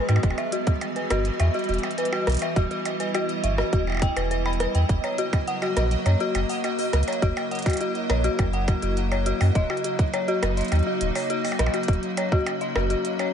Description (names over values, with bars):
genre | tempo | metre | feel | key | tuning
IDM | 103 BPM | 4/4 | straight | unclear | A4 = 442 Hz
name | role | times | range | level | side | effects
icy glass pad | sustained chords | 0.0-13.3 s | C#3 to A#4 | -30 LUFS | equal | chorus, built-in reverb, vintage 12-bit sampler grit
dark detuned synth bell | arpeggios | 0.0-13.3 s | F#4 to B5 | -27 LUFS | left 3 dB | chorus, tremolo, dub echo
pulsing gated texture | texture | 0.0-13.3 s | D#5 | -33 LUFS | right 6 dB | chorus, built-in reverb, sidechain pumping
warm sub bass | bass | 0.1-12.9 s | D#1 to G#2 | -24 LUFS | equal | none
glitchy drum kit | drums | 0.1-13.3 s | hi-hat, percussion blips, rim click | -31 LUFS | equal | overdrive
electronic kick drum | drums | 0.2-12.4 s | none | -23 LUFS | equal | overdrive
room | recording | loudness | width
light reverb, digital ambience | nothing above 10.6 kHz | -22 LUFS | side -8 dB against mid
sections
0.0-13.3 A section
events
break 13.0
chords
0.2 Emadd9; 4.9 F#; 9.6 D#m7